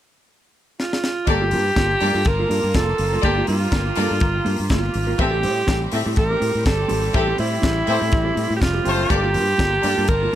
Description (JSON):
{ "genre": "disco", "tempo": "123 BPM", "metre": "4/4", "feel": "swing 56% on 16ths", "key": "G dorian", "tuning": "A4 = 440 Hz", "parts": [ { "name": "breathy alto saxophone", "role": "melody", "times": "0.8-10.4 s", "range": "E4 to Bb4", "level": "-22 LUFS", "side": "right 2 dB", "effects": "none" }, { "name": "tight funk drum kit", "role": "drums", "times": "0.8-10.2 s", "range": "hi-hat, kick drum, snare drum", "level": "-24 LUFS", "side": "left 1 dB", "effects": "none" }, { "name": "clear studio string section", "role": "second line", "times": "1.3-10.0 s", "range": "Bb3 to E5", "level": "-26 LUFS", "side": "left 2 dB", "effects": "none" }, { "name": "mellow electric guitar", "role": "accompaniment", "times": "1.3-10.4 s", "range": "Bb3 to C5", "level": "-28 LUFS", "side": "right 3 dB", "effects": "none" }, { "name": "clear studio string section", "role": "sustained chords", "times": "1.3-10.4 s", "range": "G3 to A5", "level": "-30 LUFS", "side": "right 1 dB", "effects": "none" }, { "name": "fingered electric bass", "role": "bass", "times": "1.3-10.3 s", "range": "F1 to A2", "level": "-23 LUFS", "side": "equal", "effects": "none" }, { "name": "clear horn section", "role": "stabs", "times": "7.9-9.2 s", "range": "A3 to C5", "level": "-26 LUFS", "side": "left 4 dB", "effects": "none" } ], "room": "little or no reverb", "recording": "none", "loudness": "-17 LUFS", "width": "side -12 dB against mid", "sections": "0.0-1.3 A section; 1.3-10.4 B section", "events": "drum fill 0.8-1.3; band accent 7.1-9.1", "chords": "0.0 N.C.; 1.3 Gm9; 5.2 Am7; 9.1 Gm9" }